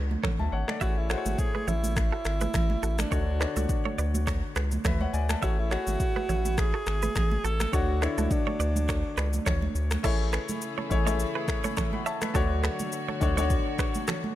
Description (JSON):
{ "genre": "afrobeats", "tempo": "104 BPM", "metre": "4/4", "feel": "swing 55% on 16ths", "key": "A major", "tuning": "A4 = 443 Hz", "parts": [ { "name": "clear grand piano", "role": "accompaniment", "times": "0.0-14.3 s", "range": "D3 to B5", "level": "-33 LUFS", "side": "left 6 dB", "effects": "none" }, { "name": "direct-recorded clean electric guitar", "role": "riff", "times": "0.0-14.2 s", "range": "E4 to E5", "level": "-36 LUFS", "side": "right 8 dB", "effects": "digital delay" }, { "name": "round analog bass", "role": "bass", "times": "0.0-13.6 s", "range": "G#1 to D2", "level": "-28 LUFS", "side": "equal", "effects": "none" }, { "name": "congas", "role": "percussion", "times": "0.1-14.3 s", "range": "none", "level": "-35 LUFS", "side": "right 4 dB", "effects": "none" }, { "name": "afro-pop drum kit", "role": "drums", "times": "0.2-14.2 s", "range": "crash cymbal, finger snaps, kick drum, rim click, shaker", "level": "-30 LUFS", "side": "equal", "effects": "none" }, { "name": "breathy alto saxophone", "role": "melody", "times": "0.8-9.8 s", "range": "D4 to A4", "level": "-33 LUFS", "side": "right 1 dB", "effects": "digital delay" }, { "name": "warm studio string section", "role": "sustained chords", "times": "10.0-14.3 s", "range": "C#3 to C#5", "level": "-38 LUFS", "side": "right 2 dB", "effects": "none" } ], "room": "studio reverb", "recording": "none", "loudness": "-25 LUFS", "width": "side -13 dB against mid", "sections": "0.0-10.0 A section; 10.0-14.3 B section", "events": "break 0.0-0.8; grand piano fill 9.2-10.0", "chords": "0.0 Dmaj7; 0.8 Amaj7; 3.1 Dmaj7; 5.4 Amaj7; 7.7 Dmaj7; 10.0 Amaj7; 12.3 Dmaj7" }